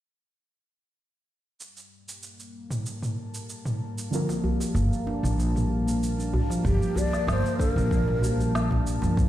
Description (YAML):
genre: organic downtempo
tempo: 95 BPM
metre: 4/4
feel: straight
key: G minor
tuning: A4 = 440 Hz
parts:
  - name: warm analog pad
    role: sustained chords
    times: 1.6-9.3 s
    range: G3 to A5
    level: -34 LUFS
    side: left 1 dB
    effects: chorus, sidechain pumping
  - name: organic electronic drum kit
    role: drums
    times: 1.6-9.3 s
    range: cabasa, snare drum, toms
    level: -33 LUFS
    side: right 1 dB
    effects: none
  - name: deep mellow chord stab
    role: accompaniment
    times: 4.1-6.7 s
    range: D3 to Bb4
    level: -32 LUFS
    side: right 1 dB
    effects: chorus, sidechain pumping, tape echo
  - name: handpan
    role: arpeggios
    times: 4.1-9.3 s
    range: F3 to D4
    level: -29 LUFS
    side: equal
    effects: tape echo
  - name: djembe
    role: percussion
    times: 4.3-9.1 s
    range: none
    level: -31 LUFS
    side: equal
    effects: none
  - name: upright bass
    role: bass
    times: 4.7-9.3 s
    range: G1 to Bb1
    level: -26 LUFS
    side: equal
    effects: none
  - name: electronic kick drum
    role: drums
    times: 6.6-9.3 s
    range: none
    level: -26 LUFS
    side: equal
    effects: none
  - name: breathy mellow ney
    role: melody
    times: 6.7-8.5 s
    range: G4 to D5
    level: -31 LUFS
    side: equal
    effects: digital delay
room: moderate lush hall reverb, RT60 1.6 s, studio reverb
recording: played on a big sound system in a bare room, stone room reverb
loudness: -24 LUFS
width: side -13 dB against mid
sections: 1.6-6.6 A section; 6.6-9.3 B section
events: filter sweep on analog synth pad 1.6-6.6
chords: 1.6 Gm7